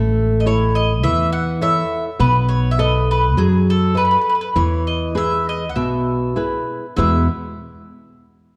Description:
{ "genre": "italian folk, Italian serenade", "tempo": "102 BPM", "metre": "4/4", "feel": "rubato", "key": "E major", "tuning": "A4 = 440 Hz", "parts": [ { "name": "flamenco guitar", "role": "accompaniment", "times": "0.0-7.3 s", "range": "E2 to D#5", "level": "-23 LUFS", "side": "equal", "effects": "none" }, { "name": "upright bass", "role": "bass", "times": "0.0-7.3 s", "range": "A1 to F#2", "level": "-22 LUFS", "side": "equal", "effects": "none" }, { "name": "mandolin", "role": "melody", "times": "0.4-7.3 s", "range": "G#4 to F#5", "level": "-22 LUFS", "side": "equal", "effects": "none" } ], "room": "moderate concert hall reverb, RT60 1.9 s", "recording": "dark, warm production", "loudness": "-18 LUFS", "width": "mono", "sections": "0.0-7.0 A section; 7.0-8.6 B section", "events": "none", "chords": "0.0 A; 2.2 B7; 4.6 E" }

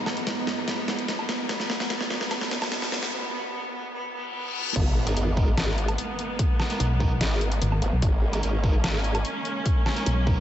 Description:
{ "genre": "heavy wobble dubstep", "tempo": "147 BPM", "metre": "4/4", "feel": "half-time", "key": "G# minor", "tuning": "A4 = 440 Hz", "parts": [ { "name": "rich cello", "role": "melody", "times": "0.0-4.7 s", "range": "B3", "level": "-34 LUFS", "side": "right 1 dB", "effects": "ping-pong delay" }, { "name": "clear studio string section", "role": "sustained chords", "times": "0.0-10.4 s", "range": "G#2 to D#4", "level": "-33 LUFS", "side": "equal", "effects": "sidechain pumping" }, { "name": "riser, reverse cymbal and sub drop", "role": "sound effects", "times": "0.8-6.4 s", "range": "none", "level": "-36 LUFS", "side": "left 2 dB", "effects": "none" }, { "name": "dubstep drum kit", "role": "drums", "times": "0.1-10.1 s", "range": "crash cymbal, hi-hat, snare drum, woodblock", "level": "-30 LUFS", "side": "equal", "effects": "none" }, { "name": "formant-sweep wobble bass", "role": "bass", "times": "4.8-9.2 s", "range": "G#1", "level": "-26 LUFS", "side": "equal", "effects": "chorus, overdrive" }, { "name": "electronic kick drum", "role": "drums", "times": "4.8-10.4 s", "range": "none", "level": "-24 LUFS", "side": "equal", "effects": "none" }, { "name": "sludgy distorted guitar", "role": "stabs", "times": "5.1-10.4 s", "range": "G#3 to A#4", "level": "-36 LUFS", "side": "right 3 dB", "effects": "none" }, { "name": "pulsing pluck wobble bass", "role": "bass", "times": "6.8-10.4 s", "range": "G#1 to B1", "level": "-23 LUFS", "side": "equal", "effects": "chorus, overdrive" } ], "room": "moderate cathedral reverb, RT60 5.8 s", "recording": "dreamy mix soaked in reverb, high-pass filter, nothing above 7.9 kHz", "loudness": "-23 LUFS", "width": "side -11 dB against mid", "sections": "0.0-4.8 A section; 4.8-10.4 B section", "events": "build-up 0.0-4.8; drum fill 0.0-3.1; filter sweep 0.0-4.8; break 3.1-4.8; reverse cymbal 4.2-4.8; drop 4.8-10.4; impact 4.8-6.4", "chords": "0.0 G#madd9" }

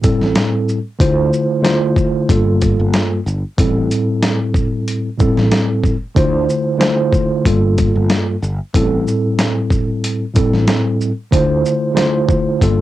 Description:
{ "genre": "hip hop, boom-bap hip-hop", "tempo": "93 BPM", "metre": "4/4", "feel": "swing 55% on 16ths", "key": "D minor", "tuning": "A4 = 440 Hz", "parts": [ { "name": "mellow tine electric piano", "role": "accompaniment", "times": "0.0-12.8 s", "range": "G2 to C5", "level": "-15 LUFS", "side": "equal", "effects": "medium stereo tremolo, cassette tape" }, { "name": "dusty soul sampler-style drum kit", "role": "drums", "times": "0.0-12.8 s", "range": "hi-hat, kick drum, shaker, snare drum", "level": "-17 LUFS", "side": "equal", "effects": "overdrive, cassette tape" }, { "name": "sustaining fretless electric bass", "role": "bass", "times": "0.2-12.8 s", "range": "G1 to D2", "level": "-19 LUFS", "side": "equal", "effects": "analog chorus" } ], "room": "light reverb", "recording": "home recording on cassette", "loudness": "-13 LUFS", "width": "side -14 dB against mid", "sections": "0.0-12.8 A section", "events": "none", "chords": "0.0 Am7; 1.0 Dm7; 2.3 Gm7; 3.6 Am7; 6.2 Dm7; 7.5 Gm7; 8.7 Am7; 11.3 Dm7" }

